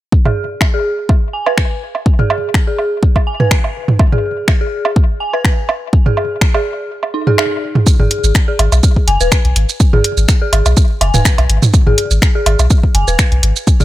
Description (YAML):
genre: minimal techno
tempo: 124 BPM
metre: 4/4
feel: swing 54% on 16ths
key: G# minor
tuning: A4 = 439 Hz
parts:
  - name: electronic kick drum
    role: drums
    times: 0.1-13.8 s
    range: none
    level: -11 LUFS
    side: equal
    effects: overdrive
  - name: dark detuned synth bell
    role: riff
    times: 0.3-13.8 s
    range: D#4 to G#5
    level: -19 LUFS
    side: equal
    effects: chorus, phaser, sidechain pumping, low-pass filter, ping-pong delay
  - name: electronic toms and woodblock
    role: percussion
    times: 0.3-13.8 s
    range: none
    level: -17 LUFS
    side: right 2 dB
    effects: overdrive, ping-pong delay
  - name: booming analog drum machine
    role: drums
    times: 0.6-13.8 s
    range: finger snaps, hi-hat, shaker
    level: -18 LUFS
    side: equal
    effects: none
  - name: punchy sub bass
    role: bass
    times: 8.0-13.8 s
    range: D#1 to B1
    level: -13 LUFS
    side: equal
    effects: sidechain pumping
room: little or no reverb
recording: none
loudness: -11 LUFS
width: side -15 dB against mid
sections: 0.1-7.9 A section; 7.9-13.8 B section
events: filter sweep on synth bell 0.1-7.9; kick drops out 6.9-7.9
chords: 0.1 N.C.; 7.9 G#m